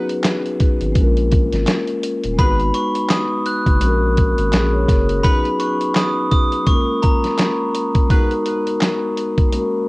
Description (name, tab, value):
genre	hip hop, boom-bap hip-hop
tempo	84 BPM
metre	4/4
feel	swing 58% on 16ths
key	G# dorian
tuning	A4 = 439 Hz
part	vibraphone with soft mallets	accompaniment	0.0-9.9 s	F#3 to C#5	-20 LUFS	left 1 dB	cassette tape, high-pass filter, low-pass filter
part	dusty soul sampler-style drum kit	drums	0.1-9.7 s	handclaps, hi-hat, kick drum, snare drum	-17 LUFS	equal	cassette tape
part	saturated sub bass	bass	0.8-5.2 s	D#1 to A#1	-19 LUFS	equal	none
part	glockenspiel with hard plastic mallets	melody	2.4-8.1 s	A#5 to F#6	-22 LUFS	equal	high-pass filter, low-pass filter, cassette tape
part	warm horn section	stabs	2.4-8.3 s	D#4 to B4	-32 LUFS	right 2 dB	high-pass filter, low-pass filter, cassette tape, tape echo
room	studio reverb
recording	home recording on cassette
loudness	-15 LUFS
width	side -24 dB against mid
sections	0.0-9.9 A section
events	none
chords	0.0 B; 1.0 A#m7; 2.4 G#m7; 3.8 F#add9; 5.2 B; 6.7 A#m7; 8.1 G#m7